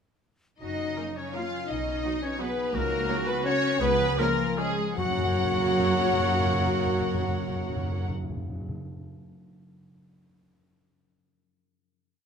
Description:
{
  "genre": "classical, orchestral ballroom waltz",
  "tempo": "147-182 BPM",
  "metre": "3/4",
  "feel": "rubato",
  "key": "F# major",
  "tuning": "A4 = 439 Hz",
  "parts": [
    { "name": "rich symphonic violin section", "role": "melody", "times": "0.6-8.1 s", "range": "G#4 to F#5", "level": "-32 LUFS", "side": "left 2 dB", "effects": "none" },
    { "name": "clear clarinet", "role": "second line", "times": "0.6-8.1 s", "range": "F#4 to E#5", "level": "-34 LUFS", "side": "equal", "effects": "none" },
    { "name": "concert flute", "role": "second line", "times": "0.6-8.1 s", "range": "G#4 to F#5", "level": "-34 LUFS", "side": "left 2 dB", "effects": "none" },
    { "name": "mellow oboe", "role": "second line", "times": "0.6-8.1 s", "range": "C#4 to C#5", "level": "-36 LUFS", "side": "right 2 dB", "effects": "none" },
    { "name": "mellow French horn section", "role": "sustained chords", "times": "0.6-8.1 s", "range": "G#3 to F#4", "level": "-32 LUFS", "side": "left 4 dB", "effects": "none" },
    { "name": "concert harp", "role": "arpeggios", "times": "0.6-8.9 s", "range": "F#2 to C#5", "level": "-37 LUFS", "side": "left 8 dB", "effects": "none" },
    { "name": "rich symphonic cello section", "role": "bass", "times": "0.6-8.1 s", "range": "F#3 to E#4", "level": "-34 LUFS", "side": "right 4 dB", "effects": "none" },
    { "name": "warm symphonic double bass section", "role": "bass", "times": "0.6-8.1 s", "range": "F#1 to F#2", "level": "-34 LUFS", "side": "right 4 dB", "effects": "none" },
    { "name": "warm symphonic violin section", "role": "second line", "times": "1.0-8.1 s", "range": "C#4 to C#5", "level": "-38 LUFS", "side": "left 2 dB", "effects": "none" },
    { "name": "rich studio viola section", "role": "accompaniment", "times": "1.0-8.1 s", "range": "E#3 to F#4", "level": "-34 LUFS", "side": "right 2 dB", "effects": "none" },
    { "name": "mellow trombone section", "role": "sustained chords", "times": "1.0-8.1 s", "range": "B2 to A#3", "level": "-37 LUFS", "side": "right 4 dB", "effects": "none" },
    { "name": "timpani", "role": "percussion", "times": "2.7-8.8 s", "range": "F#2 to C#3", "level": "-34 LUFS", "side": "left 1 dB", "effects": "none" }
  ],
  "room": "moderate recital hall reverb, RT60 1.7 s",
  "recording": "close, detailed microphones",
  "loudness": "-24 LUFS",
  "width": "side -6 dB against mid",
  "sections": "0.6-5.0 A section; 5.0-7.3 final chord",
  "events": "slowing down 2.2-5.0",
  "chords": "0.6 F#; 1.7 B; 2.7 F#/C#; 3.8 C#7; 5.0 F#"
}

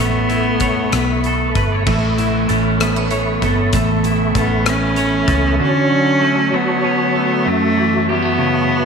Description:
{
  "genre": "six-eight pop ballad",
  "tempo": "64 BPM (dotted quarters)",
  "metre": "6/8",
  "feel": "straight",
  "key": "unclear",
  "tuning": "A4 = 440 Hz",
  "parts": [
    { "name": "rich cello", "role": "melody", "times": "0.0-1.5, 4.4-8.8 s", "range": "A3 to C#4", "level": "-18 LUFS", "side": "equal", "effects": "none" },
    { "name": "twelve-string electric guitar", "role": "accompaniment", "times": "0.0-8.8 s", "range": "F#2 to C#5", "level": "-19 LUFS", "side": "equal", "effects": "double-tracked left and right" },
    { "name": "mellow tonewheel organ", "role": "sustained chords", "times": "0.0-8.8 s", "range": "F#4 to C#6", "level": "-23 LUFS", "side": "equal", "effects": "chorus vibrato, fast rotary speaker" },
    { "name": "vintage muted fingered electric bass", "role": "bass", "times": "0.0-5.6 s", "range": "G1 to C#2", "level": "-20 LUFS", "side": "equal", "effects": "none" },
    { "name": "huge arena drum kit", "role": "drums", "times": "0.3-5.4 s", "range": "crash cymbal, hi-hat, kick drum, rim click", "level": "-24 LUFS", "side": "left 3 dB", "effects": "none" },
    { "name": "picked steel-string acoustic guitar", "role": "arpeggios", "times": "1.9-6.2 s", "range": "E3 to C#4", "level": "-25 LUFS", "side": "right 9 dB", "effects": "slapback echo" }
  ],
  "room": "moderate echo chamber reverb, RT60 2.1 s",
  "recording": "1960s-style stereo",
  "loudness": "-14 LUFS",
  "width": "side -6 dB against mid",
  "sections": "0.0-1.9 A section; 1.9-5.6 B section; 5.6-8.8 C section",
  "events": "none",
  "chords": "0.0 Aadd9; 5.6 Dmaj7; 7.5 F#m7"
}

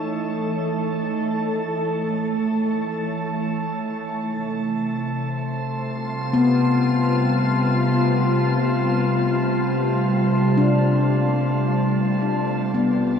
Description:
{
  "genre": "ambient",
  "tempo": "free time",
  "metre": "none",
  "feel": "none",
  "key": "unclear",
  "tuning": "A4 = 440 Hz",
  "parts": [
    { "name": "glassy FM pad", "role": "sustained chords", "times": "0.0-13.2 s", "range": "C3 to C6", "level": "-21 LUFS", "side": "equal", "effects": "ensemble chorus, built-in reverb" },
    { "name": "handpan", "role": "arpeggios", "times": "0.0-13.2 s", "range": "B3 to E4", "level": "-24 LUFS", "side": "left 4 dB", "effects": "diffuse ambient delay" },
    { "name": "glass harmonica", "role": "texture", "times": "0.0-13.2 s", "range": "A3 to A5", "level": "-30 LUFS", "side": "right 1 dB", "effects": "none" },
    { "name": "warm sub bass", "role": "bass", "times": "12.7-13.2 s", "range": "A1", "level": "-51 LUFS", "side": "equal", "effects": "tube saturation" }
  ],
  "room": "wet shimmer reverb, RT60 9.2 s",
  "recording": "dark, warm production, nothing above 10.3 kHz",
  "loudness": "-19 LUFS",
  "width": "side -7 dB against mid",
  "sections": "0.0-12.7 A section",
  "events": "none",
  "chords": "0.0 A; 4.2 Fsus2"
}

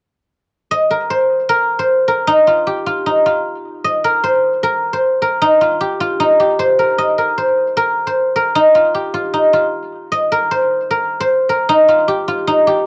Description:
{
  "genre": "hip hop",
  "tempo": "153 BPM",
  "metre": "4/4",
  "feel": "half-time",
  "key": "Eb major",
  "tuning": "A4 = 440 Hz",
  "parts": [
    { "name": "guzheng", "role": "solo", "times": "0.7-12.9 s", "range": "Eb4 to Eb5", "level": "-15 LUFS", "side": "equal", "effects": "low-pass filter, cassette tape" }
  ],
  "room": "moderate small room reverb, RT60 0.5 s",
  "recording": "home recording on cassette",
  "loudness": "-15 LUFS",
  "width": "mono",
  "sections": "0.7-12.9 A section",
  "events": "none",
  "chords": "none"
}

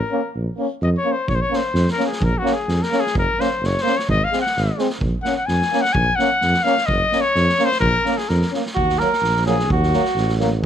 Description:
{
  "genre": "balkan folk, Balkan brass band",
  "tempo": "128 BPM",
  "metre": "2/4",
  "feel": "swing 54% on 16ths",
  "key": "Bb minor",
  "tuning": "A4 = 440 Hz",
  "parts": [
    { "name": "warm trumpet", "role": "second line", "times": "0.0-8.5 s", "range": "Gb4 to Ab5", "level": "-20 LUFS", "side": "left 3 dB", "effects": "none" },
    { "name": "clear euphonium", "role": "accompaniment", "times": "0.1-10.5 s", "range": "Bb3 to Db4", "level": "-26 LUFS", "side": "left 7 dB", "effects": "none" },
    { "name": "clear trombone", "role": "accompaniment", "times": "0.1-10.5 s", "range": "Gb3 to Bb3", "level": "-26 LUFS", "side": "right 9 dB", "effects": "none" },
    { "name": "mellow tuba", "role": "bass", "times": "0.3-10.7 s", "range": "Gb1 to F2", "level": "-20 LUFS", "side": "right 1 dB", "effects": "none" },
    { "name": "street-band drum kit", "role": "percussion", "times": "1.3-10.7 s", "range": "kick drum, snare drum", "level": "-26 LUFS", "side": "right 1 dB", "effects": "none" },
    { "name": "warm flugelhorn", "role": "melody", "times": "8.7-10.4 s", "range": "Gb4 to Bb4", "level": "-20 LUFS", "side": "right 2 dB", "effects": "none" }
  ],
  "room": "little or no reverb",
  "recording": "close, detailed microphones",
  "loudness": "-17 LUFS",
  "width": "side -9 dB against mid",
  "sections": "0.0-8.8 A section; 8.8-10.7 B section",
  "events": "trumpet solo 0.0-8.8",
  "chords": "0.3 Bbm; 3.2 Gb; 4.1 Ab; 5.0 Bbm; 6.9 Gb; 7.8 Bbm; 8.8 Ebm"
}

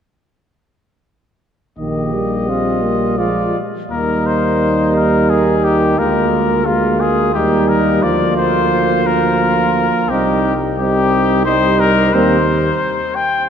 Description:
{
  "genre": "classical, brass quintet",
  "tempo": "88 BPM",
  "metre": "3/4",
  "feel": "rubato",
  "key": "Eb major",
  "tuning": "A4 = 441 Hz",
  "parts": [
    { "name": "bright trumpet", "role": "melody", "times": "1.8-13.5 s", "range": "F4 to G5", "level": "-18 LUFS", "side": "left 5 dB", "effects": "none" },
    { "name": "warm flugelhorn", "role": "second line", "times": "1.8-12.4 s", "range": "C4 to G4", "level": "-20 LUFS", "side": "right 5 dB", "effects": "none" },
    { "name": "dark French horn", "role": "accompaniment", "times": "1.8-12.4 s", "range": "Ab3 to C4", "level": "-20 LUFS", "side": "left 3 dB", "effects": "none" },
    { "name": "mellow euphonium", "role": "accompaniment", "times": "1.8-12.4 s", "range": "Eb3 to Ab3", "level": "-20 LUFS", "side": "right 2 dB", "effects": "none" },
    { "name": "mellow bass trombone", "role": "bass", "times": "1.8-12.7 s", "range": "Bb1 to Eb2", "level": "-21 LUFS", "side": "right 2 dB", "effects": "none" }
  ],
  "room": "wet church reverb, RT60 3.5 s",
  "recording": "none",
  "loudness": "-13 LUFS",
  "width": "side -8 dB against mid",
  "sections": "1.8-3.9 A section; 3.9-13.5 B section",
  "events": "none",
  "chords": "1.8 Eb/Bb; 2.8 Bb7; 3.9 Eb; 6.0 Bb7/D; 7.3 Eb; 8.0 Bb/D; 10.1 Cm; 12.1 Cm7/Eb"
}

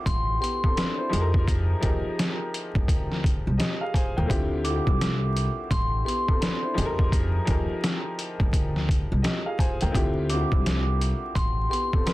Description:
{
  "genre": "hip hop, boom-bap hip-hop",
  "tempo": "85 BPM",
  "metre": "4/4",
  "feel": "swing 63% on 16ths",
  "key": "unclear",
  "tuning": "A4 = 440 Hz",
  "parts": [
    { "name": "vibraphone with hard mallets", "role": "melody", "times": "0.0-12.1 s", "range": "C6 to D6", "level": "-30 LUFS", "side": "equal", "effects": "high-pass filter, low-pass filter" },
    { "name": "warm upright piano", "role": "accompaniment", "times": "0.0-12.1 s", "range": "D3 to Ab5", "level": "-30 LUFS", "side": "left 1 dB", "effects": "high-pass filter, low-pass filter" },
    { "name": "upright bass", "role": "bass", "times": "0.1-11.7 s", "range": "A1 to F2", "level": "-26 LUFS", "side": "equal", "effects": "none" },
    { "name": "trip hop sampler-style drum kit", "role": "drums", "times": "0.1-12.1 s", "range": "hi-hat, kick drum, snare drum", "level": "-25 LUFS", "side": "equal", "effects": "vintage 12-bit sampler grit" }
  ],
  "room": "little or no reverb",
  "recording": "dense, heavily limited modern master, vinyl crackle",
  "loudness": "-22 LUFS",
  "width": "side -18 dB against mid",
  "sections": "0.0-12.1 A section",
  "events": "none",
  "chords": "0.0 Dm11; 1.1 Fm11; 4.3 Dm11; 6.8 Fm11; 9.9 Dm11"
}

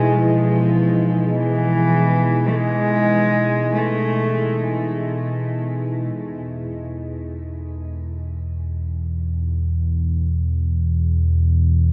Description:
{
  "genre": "dark ambient drone",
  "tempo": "free time",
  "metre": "none",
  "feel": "none",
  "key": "E major",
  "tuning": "A4 = 440 Hz",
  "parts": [
    { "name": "warm cello", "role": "melody", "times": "0.0-4.9 s", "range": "E3 to A3", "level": "-23 LUFS", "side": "equal", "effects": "shimmer reverb, diffuse ambient delay" },
    { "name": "deep dark ambient pad", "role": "sustained chords", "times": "0.0-6.2 s", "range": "E4 to D#5", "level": "-26 LUFS", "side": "equal", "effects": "chorus, built-in reverb, shimmer reverb" },
    { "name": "deep rumbling drone", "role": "drone", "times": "0.0-11.9 s", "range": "E2 to B2", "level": "-23 LUFS", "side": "equal", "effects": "built-in reverb" }
  ],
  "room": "wet huge ambient reverb, RT60 8.6 s",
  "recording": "dark, warm production",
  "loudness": "-20 LUFS",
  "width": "mono",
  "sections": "0.0-6.2 A section; 6.2-11.9 B section",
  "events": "none",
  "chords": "0.0 E5"
}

